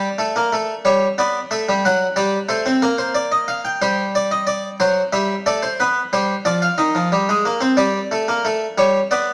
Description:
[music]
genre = classical, baroque-style two-part invention for harpsichord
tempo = 61 BPM (dotted quarters)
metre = 6/8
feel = straight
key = unclear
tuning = A4 = 440 Hz
[part]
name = harpsichord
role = solo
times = 0.0-9.3 s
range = Eb3 to G5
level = -19 LUFS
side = equal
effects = none
[sound]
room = wet stone room reverb, RT60 1.3 s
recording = none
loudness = -19 LUFS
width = mono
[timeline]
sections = 0.0-9.3 A section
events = none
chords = 0.0 Gm (rootless); 0.8 A7/G; 1.8 D7/F#; 2.8 Gm/Bb; 3.8 Cm/G; 4.8 D7/F#; 5.8 G7; 6.8 Cm/Eb; 7.8 Gm; 8.8 A7/G (rootless)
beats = 0.84 | 1.83 2.82 | 3.81 4.80 | 5.79 6.78 | 7.77 8.77

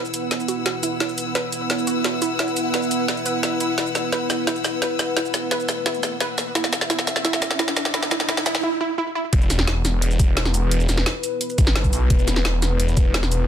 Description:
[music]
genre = dark technical drum and bass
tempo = 173 BPM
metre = 4/4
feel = straight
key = unclear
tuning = A4 = 440 Hz
[part]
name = dark analog pad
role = sustained chords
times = 0.0-13.5 s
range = B3 to E5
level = -28 LUFS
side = equal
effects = chorus, sidechain pumping
[part]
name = wide unison pluck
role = arpeggios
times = 0.0-9.2 s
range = E4 to E5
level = -27 LUFS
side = right 3 dB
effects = sidechain pumping, digital delay
[part]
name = dark chamber string section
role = texture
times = 0.0-8.6 s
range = E4 to E6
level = -28 LUFS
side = left 2 dB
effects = sidechain pumping
[part]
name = drum and bass drum kit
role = drums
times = 0.1-13.4 s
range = hi-hat, shaker, snare drum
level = -23 LUFS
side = equal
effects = overdrive, high-pass filter on snare, high-pass filter on hats, high-pass filter on perc
[part]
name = riser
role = sound effects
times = 5.8-8.6 s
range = none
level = -31 LUFS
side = right 1 dB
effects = none
[part]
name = snarling distorted saw bass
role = bass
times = 9.3-13.5 s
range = E1 to B1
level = -20 LUFS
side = equal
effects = distortion, tube saturation, sidechain pumping
[part]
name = electronic kick drum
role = drums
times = 9.3-13.0 s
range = none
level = -18 LUFS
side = equal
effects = overdrive
[sound]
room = light reverb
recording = dense, heavily limited modern master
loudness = -19 LUFS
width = side -9 dB against mid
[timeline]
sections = 0.0-9.3 A section; 9.3-13.5 B section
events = build-up 0.0-9.3; drum fill 0.0-8.6; filter sweep on synth arpeggio sound 0.0-9.3; riser 5.8-8.6; drop 9.3-13.5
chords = 0.0 E5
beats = 0.31 0.66 | 1.00 1.35 1.70 2.04 | 2.39 2.74 3.08 3.43 | 3.78 4.12 4.47 4.82 | 5.17 5.51 5.86 6.21 | 6.55 6.90 7.25 7.59 | 7.94 8.29 8.63 8.98 | 9.33 9.67 10.02 10.37 | 10.71 11.06 11.41 11.76 | 12.10 12.45 12.80 13.14

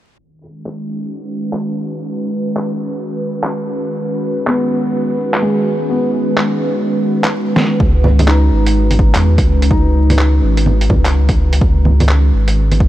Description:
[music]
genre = future garage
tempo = 126 BPM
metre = 4/4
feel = swing 64% on 16ths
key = unclear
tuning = A4 = 441 Hz
[part]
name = warbly tape-like pad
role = sustained chords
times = 0.6-12.9 s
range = D#3 to B4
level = -19 LUFS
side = equal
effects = chorus, built-in reverb, sidechain pumping
[part]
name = lo-fi sampler-style drum kit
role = drums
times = 0.7-12.8 s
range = bongos, handclaps, hi-hat, snare drum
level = -19 LUFS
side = right 1 dB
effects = overdrive, studio ambience
[part]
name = felt-muted upright piano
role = accompaniment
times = 4.5-12.9 s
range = G#3 to D#4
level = -21 LUFS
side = left 1 dB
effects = vintage 12-bit sampler grit, sidechain pumping, analog delay
[part]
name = warm sub bass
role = bass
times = 7.8-12.9 s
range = G#1 to E2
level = -12 LUFS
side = equal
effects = sidechain pumping
[part]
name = electronic kick drum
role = drums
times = 7.8-12.9 s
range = none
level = -14 LUFS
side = equal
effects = overdrive, studio ambience
[sound]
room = light reverb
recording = vinyl crackle, low-pass filter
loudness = -12 LUFS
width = side -14 dB against mid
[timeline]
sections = 0.2-7.8 A section; 7.8-12.9 B section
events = filter sweep 0.2-7.8; drum fill 7.6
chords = 0.2 C#sus2; 7.8 C#7sus2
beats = | 0.19 0.66 1.14 1.61 | 2.09 2.57 3.04 3.52 | 4.00 4.47 4.95 5.42 | 5.90 6.38 6.85 7.33 | 7.81 8.28 8.76 9.23 | 9.71 10.19 10.66 11.14 | 11.62 12.09 12.57

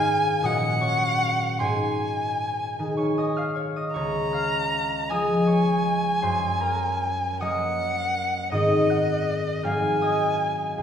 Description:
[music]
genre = classical, romantic duo for violin and harp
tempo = 52 BPM (dotted quarters)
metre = 6/8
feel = uneven beats, rubato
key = unclear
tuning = A4 = 439 Hz
[part]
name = warm violin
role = melody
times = 0.0-10.8 s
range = Eb5 to Bb5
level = -25 LUFS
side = equal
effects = none
[part]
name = concert harp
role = accompaniment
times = 0.0-10.8 s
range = Db2 to Gb6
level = -24 LUFS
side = equal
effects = none
[sound]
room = wet scoring stage reverb, RT60 1.6 s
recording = recorded in a church or concert hall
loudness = -22 LUFS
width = side -8 dB against mid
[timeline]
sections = 0.0-10.8 A section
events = none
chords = 0.4 Gb/Bb; 1.6 Ab; 4.0 Db; 6.2 Ebm/Gb; 8.5 Ab; 9.6 Ab7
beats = 0.44 | 1.60 2.78 | 3.95 5.11 | 6.23 7.41 | 8.52 9.64 | 10.82

